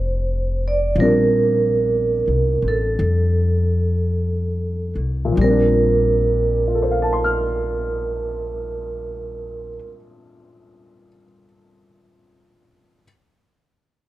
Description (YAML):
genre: jazz ballad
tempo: 46-66 BPM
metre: 4/4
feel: swing 68% on 8ths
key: Bb major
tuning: A4 = 440 Hz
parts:
  - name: vibraphone with medium hard mallets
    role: melody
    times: 0.0-9.8 s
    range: A4 to D5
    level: -21 LUFS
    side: right 3 dB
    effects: none
  - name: dark upright piano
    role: accompaniment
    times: 0.0-13.0 s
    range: Bb2 to F6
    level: -23 LUFS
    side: left 3 dB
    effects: none
  - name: upright bass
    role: bass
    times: 0.0-9.8 s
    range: F1 to F2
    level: -22 LUFS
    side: left 1 dB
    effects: none
room: little or no reverb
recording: none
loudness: -17 LUFS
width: side -15 dB against mid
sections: 0.0-5.4 A section; 5.4-10.5 B section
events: slowing down 0.0-5.4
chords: 0.0 Bb69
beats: 0.04 | 0.97 1.96 3.00 4.14 | 5.38 6.67 7.95 9.24